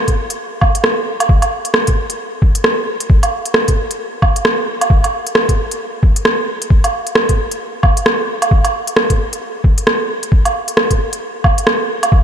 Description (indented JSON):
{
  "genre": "future garage",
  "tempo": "133 BPM",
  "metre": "4/4",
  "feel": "swing 61% on 16ths",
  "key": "none",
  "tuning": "none",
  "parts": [
    { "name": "electronic kick drum", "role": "drums", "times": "0.1-12.2 s", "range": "none", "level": "-12 LUFS", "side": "equal", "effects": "none" },
    { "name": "organic electronic drum kit", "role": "drums", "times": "0.1-12.1 s", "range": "hi-hat, rim click, woodblock", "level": "-15 LUFS", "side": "right 1 dB", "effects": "overdrive" }
  ],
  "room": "light reverb",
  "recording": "none",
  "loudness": "-13 LUFS",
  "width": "side -8 dB against mid",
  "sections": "0.0-12.2 A section",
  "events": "none",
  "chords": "none",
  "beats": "0.39 0.84 | 1.29 1.74 2.19 2.65 | 3.10 3.55 4.00 4.45 | 4.90 5.35 5.80 6.25 | 6.71 7.16 7.61 8.06 | 8.51 8.96 9.41 9.87 | 10.32 10.77 11.22 11.67 | 12.12"
}